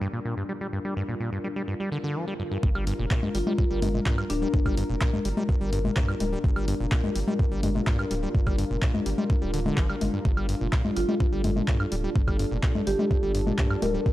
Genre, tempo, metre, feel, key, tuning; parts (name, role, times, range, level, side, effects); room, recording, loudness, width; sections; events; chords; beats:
acid house; 126 BPM; 4/4; straight; G minor; A4 = 440 Hz
dark analog pad; sustained chords; 0.0-14.1 s; G3 to Bb4; -33 LUFS; equal; chorus, sidechain pumping
acid bass, saw; riff; 0.0-14.1 s; G2 to G3; -31 LUFS; equal; tube saturation, vintage 12-bit sampler grit, analog delay
saturated sub bass; bass; 2.6-14.1 s; D1 to G2; -30 LUFS; equal; sidechain pumping
electronic kick drum; drums; 2.6-14.1 s; -24 LUFS; equal
punchy analog drum machine; drums; 2.8-13.9 s; congas, handclaps, hi-hat, woodblock; -30 LUFS; left 2 dB; overdrive
marimba with medium mallets; melody; 3.3-4.5, 11.0-14.0 s; D4 to Bb4; -31 LUFS; equal; analog delay
digital ambience; dry, gritty hardware recording, transformer saturation; -24 LUFS; side -15 dB against mid
0.0-2.6 A section; 2.6-14.1 B section
filter sweep on analog synth pad 0.0-2.6; drop 2.6-14.1
0.0 Gm7
0.25 | 0.73 1.20 1.68 2.16 | 2.63 3.11 3.58 4.06 | 4.54 5.01 5.49 5.96 | 6.44 6.92 7.39 7.87 | 8.35 8.82 9.30 9.78 | 10.25 10.73 11.20 11.68 | 12.16 12.63 13.11 13.58 | 14.06